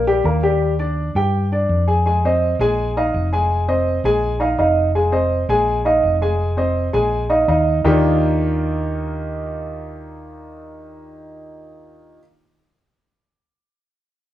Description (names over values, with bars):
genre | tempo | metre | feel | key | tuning
Afro-Cuban jazz | 166 BPM | 4/4 | straight | Eb major | A4 = 440 Hz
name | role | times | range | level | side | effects
warm baby grand piano | accompaniment | 0.0-12.2 s | Eb3 to Ab5 | -18 LUFS | equal | none
hollow-body short-scale fingered electric bass | bass | 0.0-12.2 s | F1 to G2 | -21 LUFS | equal | none
room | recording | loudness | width
light reverb | band playing live in one room | -16 LUFS | side -13 dB against mid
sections
0.0-2.1 A section; 2.1-7.8 B section; 7.8-10.7 C section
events
none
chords
0.0 Ebmaj9; 2.1 Fm7; 2.8 Bb7sus4; 3.5 Fm7; 4.2 Bb7sus4; 5.0 Fm7; 5.7 Bb7sus4; 6.4 Fm7; 7.1 Bb7sus4; 7.8 Ebmaj9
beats
0.25 | 0.61 0.97 1.33 1.70 | 2.06 2.42 2.78 3.14 | 3.50 3.87 4.23 4.59 | 4.95 5.31 5.67 6.04 | 6.40 6.76 7.12 7.48 | 7.85 8.21 8.57 8.93 | 9.29 9.66 10.02 10.38